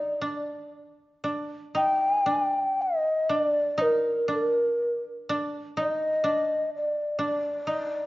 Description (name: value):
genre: japanese traditional, Japanese chamber music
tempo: 57-64 BPM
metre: 2/4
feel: rubato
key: unclear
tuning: A4 = 440 Hz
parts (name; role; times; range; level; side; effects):
- breathy mellow long shakuhachi; melody; 0.0-8.1 s; Bb4 to G5; -24 LUFS; equal; none
- koto; second line; 0.0-8.1 s; D4 to Eb4; -31 LUFS; equal; none
room: moderate recital hall reverb, RT60 1.6 s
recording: worn, warbling old tape, cassette tape, warbly pitch drift, nothing above 7.5 kHz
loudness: -24 LUFS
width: side -18 dB against mid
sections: 0.0-8.1 A section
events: none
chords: none